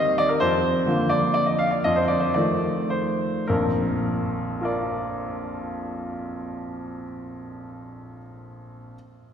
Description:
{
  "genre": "classical, piano waltz",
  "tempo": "97-137 BPM",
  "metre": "3/4",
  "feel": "rubato",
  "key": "Bb major",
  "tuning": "A4 = 438 Hz",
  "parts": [
    { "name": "bright grand piano", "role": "solo", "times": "0.0-9.0 s", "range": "Bb1 to F5", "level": "-22 LUFS", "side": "equal", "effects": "none" }
  ],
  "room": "wet church reverb, RT60 2.7 s",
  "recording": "none",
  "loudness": "-22 LUFS",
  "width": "side -8 dB against mid",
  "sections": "0.0-3.5 A section; 3.5-6.8 B section",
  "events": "slowing down 0.0-3.5",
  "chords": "0.4 Bb/F; 1.8 F7; 3.5 Bb",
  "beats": "| 0.41 0.86 1.34 | 1.83 2.33 2.88 | 3.47 4.03 4.61 | 5.16 5.72 6.29"
}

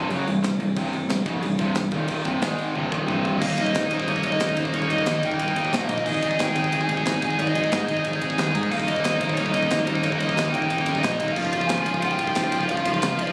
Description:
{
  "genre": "heavy metal",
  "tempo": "181 BPM",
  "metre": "4/4",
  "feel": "straight",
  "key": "unclear",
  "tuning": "A4 = 438 Hz",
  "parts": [
    { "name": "tight distorted guitar", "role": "riff", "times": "0.0-13.3 s", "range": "C2 to Ab4", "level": "-28 LUFS", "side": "equal", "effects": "distortion" },
    { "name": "growling picked electric bass", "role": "bass", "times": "0.0-13.3 s", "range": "C1 to Ab2", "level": "-29 LUFS", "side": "equal", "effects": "overdrive" },
    { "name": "modern studio drum kit", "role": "drums", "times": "0.1-13.3 s", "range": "crash cymbal, kick drum, ride cymbal, snare drum, toms", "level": "-32 LUFS", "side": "equal", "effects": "none" },
    { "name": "high-gain lead guitar", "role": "melody", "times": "3.4-13.3 s", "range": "C5 to Ab5", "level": "-29 LUFS", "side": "equal", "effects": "distortion, digital delay" }
  ],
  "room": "light reverb",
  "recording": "recorded on a phone in the room, club reverb",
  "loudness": "-23 LUFS",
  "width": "mono",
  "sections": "0.0-3.4 A section; 3.4-13.3 B section",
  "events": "drum fill 2.7-3.4",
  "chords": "0.0 Cm; 2.4 Ab5; 2.7 Cm; 3.4 Eb5; 6.1 Ab5; 8.7 Eb5; 11.4 Db",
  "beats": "0.09 0.42 | 0.76 1.09 1.42 1.75 | 2.08 2.41 2.75 3.08 | 3.41 3.74 4.07 4.40 | 4.73 5.06 5.39 5.73 | 6.06 6.39 6.72 7.05 | 7.38 7.71 8.04 8.38 | 8.71 9.04 9.37 9.70 | 10.03 10.36 10.69 11.03 | 11.36 11.69 12.02 12.35 | 12.69 13.02"
}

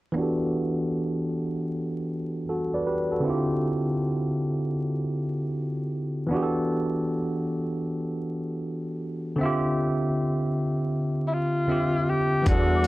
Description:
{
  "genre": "lo-fi hip hop",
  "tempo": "78 BPM",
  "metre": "4/4",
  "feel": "swing 63% on 16ths",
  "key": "unclear",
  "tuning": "A4 = 436 Hz",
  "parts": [
    { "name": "bell-like tine electric piano", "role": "accompaniment", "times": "0.1-12.9 s", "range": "D3 to E5", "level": "-25 LUFS", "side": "equal", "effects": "slow stereo tremolo, low-pass filter" },
    { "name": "warm tenor saxophone", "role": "melody", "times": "11.3-12.9 s", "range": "E4 to G4", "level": "-25 LUFS", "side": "left 1 dB", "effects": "low-pass filter" },
    { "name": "hollow soft pad", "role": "sustained chords", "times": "12.6-12.9 s", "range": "G3 to D6", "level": "-30 LUFS", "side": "left 2 dB", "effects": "ensemble chorus, low-pass filter" },
    { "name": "mellow bass clarinet", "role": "bass", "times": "12.5-12.9 s", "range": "E2", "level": "-24 LUFS", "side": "equal", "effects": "none" },
    { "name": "dusty soul sampler-style drum kit", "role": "drums", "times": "12.5-12.9 s", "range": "hi-hat, kick drum", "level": "-23 LUFS", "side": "equal", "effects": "overdrive" }
  ],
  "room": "moderate studio reverb, RT60 0.6 s",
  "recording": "vinyl crackle",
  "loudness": "-24 LUFS",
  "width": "side -18 dB against mid",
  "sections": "0.2-12.5 A section",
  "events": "filter sweep on tine electric piano 0.2-12.5",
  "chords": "0.2 Em11; 3.2 Dm11; 6.3 Em11; 9.4 Dm11",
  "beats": "| 0.16 0.93 1.70 2.47 | 3.24 4.00 4.78 5.54 | 6.31 7.08 7.85 8.62 | 9.39 10.16 10.93 11.70 | 12.47"
}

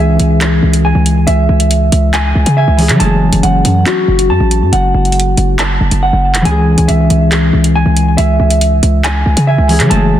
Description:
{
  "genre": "hip hop, drill",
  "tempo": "139 BPM",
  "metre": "4/4",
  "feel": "half-time",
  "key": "C# minor",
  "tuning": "A4 = 441 Hz",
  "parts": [
    { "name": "concert harp", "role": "accompaniment", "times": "0.0-10.2 s", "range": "E3 to G#5", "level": "-14 LUFS", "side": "left 1 dB", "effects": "low-pass filter" },
    { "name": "mellow electric guitar", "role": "arpeggios", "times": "0.0-10.2 s", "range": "F#4 to A5", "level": "-16 LUFS", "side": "equal", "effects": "warbly pitch drift, low-pass filter, ping-pong delay" },
    { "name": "hard-hitting 808-style bass", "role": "bass", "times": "0.0-10.2 s", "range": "E1 to C#3", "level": "-11 LUFS", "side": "equal", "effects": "none" },
    { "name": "drill drum kit", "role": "drums", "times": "0.2-10.0 s", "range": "handclaps, hi-hat", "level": "-18 LUFS", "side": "equal", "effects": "vintage 12-bit sampler grit" }
  ],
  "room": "light reverb",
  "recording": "dense, heavily limited modern master",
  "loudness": "-8 LUFS",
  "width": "side -11 dB against mid",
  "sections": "0.0-10.2 A section",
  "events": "none",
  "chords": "0.0 C#m; 3.0 F#madd9; 6.5 C#m",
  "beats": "0.41 0.84 | 1.27 1.71 2.14 2.57 | 3.00 3.43 3.87 4.30 | 4.73 5.16 5.59 6.02 | 6.46 6.89 7.32 7.75 | 8.18 8.61 9.04 9.48 | 9.91"
}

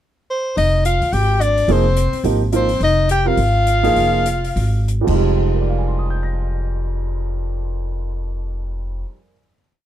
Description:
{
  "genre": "modal jazz",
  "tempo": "181-214 BPM",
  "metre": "4/4",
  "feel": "swing 60% on 8ths",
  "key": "F dorian",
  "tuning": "A4 = 440 Hz",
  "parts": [
    { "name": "warm soprano saxophone", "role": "melody", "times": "0.3-4.9 s", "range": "C5 to G5", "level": "-19 LUFS", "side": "equal", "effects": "none" },
    { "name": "clear tenor saxophone", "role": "second line", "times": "0.6-4.9 s", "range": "C4 to G4", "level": "-23 LUFS", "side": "left 9 dB", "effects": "none" },
    { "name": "upright bass", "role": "bass", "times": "0.6-9.0 s", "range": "F1 to Eb2", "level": "-19 LUFS", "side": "equal", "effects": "none" },
    { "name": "open jazz drum kit", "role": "drums", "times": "0.6-5.1 s", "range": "crash cymbal, hi-hat, kick drum", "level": "-32 LUFS", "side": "left 2 dB", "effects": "none" },
    { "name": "warm upright piano", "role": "accompaniment", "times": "1.7-9.7 s", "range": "F2 to Bb6", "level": "-22 LUFS", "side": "right 4 dB", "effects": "none" }
  ],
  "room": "little or no reverb",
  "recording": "close, detailed microphones",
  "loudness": "-16 LUFS",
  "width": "side -11 dB against mid",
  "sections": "0.0-0.6 pickup bar; 0.6-5.2 A section; 5.2-7.9 final chord",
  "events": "slowing down 2.8-5.2",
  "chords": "0.0 N.C.; 0.6 Fm9",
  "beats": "0.01 0.29 | 0.57 0.85 1.13 1.41 | 1.69 1.97 2.25 2.53 | 2.81 3.09 3.38 3.67 | 3.96 4.26 4.56 4.88 | 5.21 5.54 5.87 6.20 | 6.53 6.86 7.19 7.52"
}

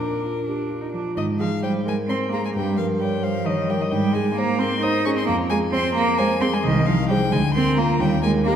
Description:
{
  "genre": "quick classical-period movement for piano trio",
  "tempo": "88 BPM (dotted quarters)",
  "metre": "6/8",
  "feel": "straight",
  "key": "Ab major",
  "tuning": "A4 = 440 Hz",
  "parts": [
    { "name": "warm violin", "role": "melody", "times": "0.0-8.6 s", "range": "Bb4 to Eb6", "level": "-28 LUFS", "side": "left 4 dB", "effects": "none" },
    { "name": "rich cello", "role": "second line", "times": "0.0-8.5 s", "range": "Eb3 to Eb4", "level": "-23 LUFS", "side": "right 3 dB", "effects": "none" },
    { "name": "dark concert grand piano", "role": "accompaniment", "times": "0.0-8.6 s", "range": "C2 to Db5", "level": "-23 LUFS", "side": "left 1 dB", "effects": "none" }
  ],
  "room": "wet scoring stage reverb, RT60 1.7 s",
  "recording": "none",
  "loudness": "-19 LUFS",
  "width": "side -8 dB against mid",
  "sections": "0.0-1.2 A section; 1.2-8.6 B section",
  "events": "none",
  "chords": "0.0 Bb; 1.2 Ab; 2.5 Eb13/G; 3.9 Ab; 5.3 Fm; 6.6 Ab/C; 7.3 Bb/D; 8.0 Eb",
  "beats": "0.46 | 1.17 1.86 | 2.55 3.23 | 3.92 4.60 | 5.28 5.97 | 6.64 7.32 | 8.00"
}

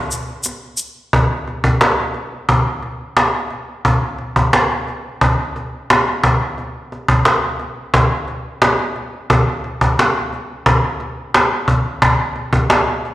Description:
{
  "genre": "rock",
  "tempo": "88 BPM",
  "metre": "4/4",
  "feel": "straight",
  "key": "none",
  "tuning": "none",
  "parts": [
    { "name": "egg shaker", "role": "percussion", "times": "0.1-0.9 s", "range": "none", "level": "-22 LUFS", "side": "left 1 dB", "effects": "none" },
    { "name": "cajon", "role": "drums", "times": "0.5-13.1 s", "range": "none", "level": "-14 LUFS", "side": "equal", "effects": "slapback echo" }
  ],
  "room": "moderate club reverb, RT60 0.7 s",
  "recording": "live gig heard through the venue's PA, recital hall reverb",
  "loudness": "-14 LUFS",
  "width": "side -15 dB against mid",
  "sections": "0.0-1.1 A section; 1.1-13.1 B section",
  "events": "kick and snare drop out 0.5-1.1",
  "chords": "none",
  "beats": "0.45 | 1.13 1.81 2.49 3.17 | 3.85 4.53 5.21 5.89 | 6.57 7.25 7.94 8.62 | 9.30 9.98 10.66 11.34 | 12.02 12.70"
}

